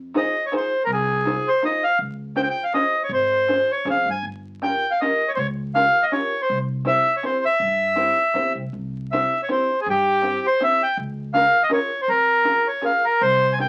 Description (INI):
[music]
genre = musette waltz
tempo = 161 BPM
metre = 3/4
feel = swing 54% on 8ths, rubato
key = unclear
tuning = A4 = 442 Hz
[part]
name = upright bass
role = bass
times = 0.0-13.7 s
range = G1 to G2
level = -33 LUFS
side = equal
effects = none
[part]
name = open-back banjo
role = accompaniment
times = 0.1-13.7 s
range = C4 to C5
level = -28 LUFS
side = equal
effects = none
[part]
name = accordion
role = melody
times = 0.2-13.7 s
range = G4 to Ab5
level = -21 LUFS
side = equal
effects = none
[sound]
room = moderate small room reverb, RT60 0.6 s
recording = very old 78 rpm record, vinyl crackle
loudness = -21 LUFS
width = mono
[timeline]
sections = 0.0-13.7 A section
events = none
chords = 0.0 Fm7; 2.0 Dbmaj7; 4.2 Gm7b5; 6.5 C; 11.0 Bbm7/Db